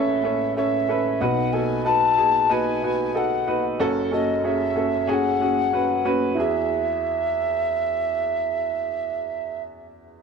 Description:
pop; 93 BPM; 4/4; straight; E major; A4 = 440 Hz
breathy mellow soprano recorder; melody; 0.0-9.6 s; D#5 to A5; -23 LUFS; left 1 dB
warm upright piano; accompaniment; 0.0-10.2 s; F#1 to C#5; -23 LUFS; right 1 dB
moderate plate reverb, RT60 2.7 s; dark, warm production; -20 LUFS; side -5 dB against mid
0.0-6.4 A section; 6.4-9.0 B section
0.0 Aadd9; 1.2 B; 3.8 F#m; 6.4 Eadd9
0.57 | 1.22 1.86 2.51 3.15 | 3.80 4.45 5.09 5.74 | 6.38 7.03 7.67 8.31

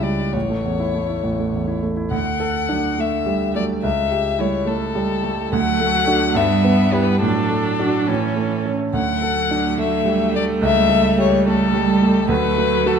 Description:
quick classical-period movement for piano quartet; 70 BPM (dotted quarters); 6/8; rubato; D major; A4 = 444 Hz
dark violin; melody; 0.0-13.0 s; A4 to F#5; -22 LUFS; left 9 dB
clear concert grand piano; accompaniment; 0.0-13.0 s; A1 to A4; -20 LUFS; right 2 dB
warm cello; second line; 2.7-13.0 s; E3 to G3; -23 LUFS; right 5 dB
clear viola; accompaniment; 2.7-13.0 s; A3 to D4; -25 LUFS; right 4 dB
wet recital hall reverb, RT60 1.2 s; -16 LUFS; side -7 dB against mid
0.0-2.1 A section; 2.1-13.0 B section
0.3 A; 2.1 D; 3.8 A7/C#; 5.5 D; 6.4 Em/G; 7.2 D/A; 8.1 A; 9.0 D; 10.6 A7/C#; 12.3 D
| 0.34 1.24 | 2.13 2.99 | 3.84 4.67 | 5.53 6.36 | 7.23 8.09 | 8.96 9.80 | 10.63 11.47 | 12.30

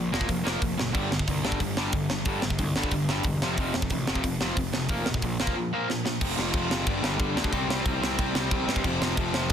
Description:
punk rock; 182 BPM; 4/4; straight; A4 = 440 Hz
crunchy overdriven guitar; riff; 0.0-9.5 s; F2 to C4; -28 LUFS; equal
fuzz picked electric bass; bass; 0.0-9.5 s; E1 to G2; -32 LUFS; equal; overdrive
tight metal drum kit; drums; 0.1-9.5 s; crash cymbal, hi-hat, kick drum, snare drum; -28 LUFS; equal
light reverb; dense, heavily limited modern master; -24 LUFS; side -8 dB against mid
0.0-6.2 A section; 6.2-9.5 B section
drum fill 5.9-6.2
0.0 Bb5/F; 0.9 G5; 3.4 F5; 4.9 Bb5/F; 6.2 F5; 6.9 G5; 7.5 C5; 8.8 F5
0.29 0.62 | 0.95 1.28 1.61 1.94 | 2.27 2.60 2.92 3.25 | 3.58 3.91 4.24 4.57 | 4.90 5.23 5.56 5.89 | 6.22 6.55 6.88 7.20 | 7.53 7.86 8.19 8.52 | 8.85 9.18 9.50

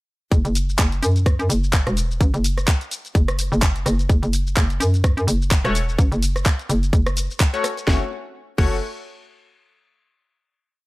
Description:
bass house; 127 BPM; 4/4; swing 56% on 16ths; F# minor; A4 = 440 Hz
hollow knocking FM bass; bass; 0.3-8.8 s; E1 to F#2; -20 LUFS; equal; overdrive, sidechain pumping
electronic kick drum; drums; 0.3-8.7 s; -17 LUFS; equal; overdrive
garage drum kit; drums; 0.3-8.7 s; crash cymbal, handclaps, hi-hat, rim click, shaker, snare drum; -25 LUFS; equal; overdrive
band-passed chord stab; stabs; 5.6-8.8 s; A3 to C#5; -26 LUFS; left 4 dB; chorus, phaser, sidechain pumping, digital delay
little or no reverb; -18 LUFS; side -21 dB against mid
0.3-7.9 drop; 7.9-9.8 final chord
drop 0.3-7.9
0.3 N.C.; 7.9 F#m
| 0.32 0.79 1.26 1.73 | 2.21 2.68 3.15 3.62 | 4.10 4.57 5.04 5.51 | 5.99 6.46 6.93 7.40 | 7.88 8.35

